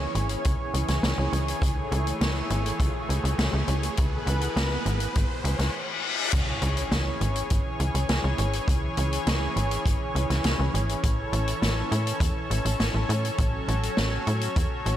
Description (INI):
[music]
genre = synthwave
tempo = 102 BPM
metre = 4/4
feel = straight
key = C# minor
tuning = A4 = 438 Hz
[part]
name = lush unison pad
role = sustained chords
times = 0.0-15.0 s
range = E3 to C#5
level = -30 LUFS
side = equal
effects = chorus, sidechain pumping
[part]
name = tight sequencer bass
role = bass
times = 0.0-15.0 s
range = G#1 to A2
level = -26 LUFS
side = equal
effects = none
[part]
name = riser, reverse cymbal and impact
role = sound effects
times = 0.4-8.7 s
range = none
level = -34 LUFS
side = left 2 dB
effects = none
[part]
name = vintage drum kit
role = drums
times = 0.2-15.0 s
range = crash cymbal, hi-hat, snare drum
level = -31 LUFS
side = left 1 dB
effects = none
[part]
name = kick drum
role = drums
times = 0.5-14.7 s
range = none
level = -26 LUFS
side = equal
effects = none
[sound]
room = light reverb, studio reverb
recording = none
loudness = -23 LUFS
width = side -12 dB against mid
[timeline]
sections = 0.0-6.3 A section; 6.3-15.0 B section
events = riser 0.4-5.7; reverse cymbal 5.2-6.3; impact 6.3-8.7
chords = 0.0 C#m; 1.6 Amaj7; 4.0 E; 6.3 C#m; 11.0 A; 13.4 F#m/A